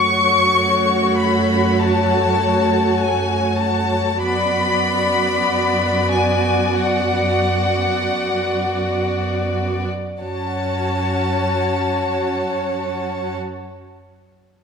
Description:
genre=classical, slow romantic movement for string orchestra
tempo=free time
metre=none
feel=none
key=F# minor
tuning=A4 = 443 Hz
part: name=rich chamber violin section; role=melody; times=0.0-13.4 s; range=F#5 to C#6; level=-20 LUFS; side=left 4 dB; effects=none
part: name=warm chamber violin section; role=second line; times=0.0-13.4 s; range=F#4 to D5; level=-22 LUFS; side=left 3 dB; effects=none
part: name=rich chamber viola section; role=accompaniment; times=0.0-13.4 s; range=A3 to F#4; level=-23 LUFS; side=right 5 dB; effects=none
part: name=warm chamber cello section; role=bass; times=0.0-13.4 s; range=F#2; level=-24 LUFS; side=right 2 dB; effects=none
room=wet scoring stage reverb, RT60 1.9 s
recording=none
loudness=-16 LUFS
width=side -6 dB against mid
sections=0.0-10.2 A section; 10.2-14.6 B section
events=slowing down 0.0-10.2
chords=0.0 F#m; 4.2 Bm/F#; 10.2 F#m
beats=free time

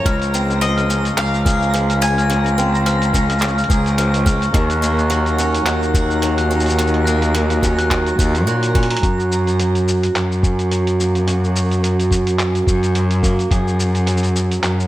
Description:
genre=folktronica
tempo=107 BPM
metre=4/4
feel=swing 56% on 16ths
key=Gb lydian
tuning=A4 = 438 Hz
part: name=mandolin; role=melody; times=0.0-3.1 s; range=Db5 to Ab5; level=-22 LUFS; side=left 2 dB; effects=ping-pong delay
part: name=warbly tape-like pad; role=sustained chords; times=0.6-9.0 s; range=Eb4 to Db6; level=-27 LUFS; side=left 1 dB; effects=chorus, built-in reverb
part: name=picked swing-style acoustic guitar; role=arpeggios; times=0.0-14.9 s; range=Gb2 to Bb4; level=-22 LUFS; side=right 2 dB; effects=low-pass filter, ping-pong delay
part: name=rich cello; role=bass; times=0.0-14.9 s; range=Db2 to Bb2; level=-17 LUFS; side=equal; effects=none
part: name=twinkling granular texture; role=texture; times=0.0-9.0 s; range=Bb5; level=-31 LUFS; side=right 2 dB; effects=built-in reverb
part: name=glockenspiel with rubber mallets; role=second line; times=0.1-9.0 s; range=Bb5 to Gb6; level=-26 LUFS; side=left 2 dB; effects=tape echo
part: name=electronic kick drum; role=drums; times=0.1-13.6 s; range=none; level=-18 LUFS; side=equal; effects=none
part: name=lo-fi sampler-style drum kit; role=drums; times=0.1-14.9 s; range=cabasa, handclaps, hi-hat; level=-25 LUFS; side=equal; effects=none
room=light reverb, small room ambience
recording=none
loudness=-14 LUFS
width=side -14 dB against mid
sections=0.0-9.0 A section; 9.0-14.9 B section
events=drum fill 8.7; filter sweep on steel-string acoustic guitar 9.0-14.9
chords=0.1 Dbmaj7; 4.5 Ebm7; 9.0 Gb; 13.5 N.C.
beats=| 0.05 0.61 1.18 1.74 | 2.30 2.86 3.42 3.98 | 4.54 5.10 5.66 6.22 | 6.78 7.34 7.91 8.47 | 9.03 9.59 10.15 10.71 | 11.27 11.83 12.39 12.95 | 13.51 14.07 14.63

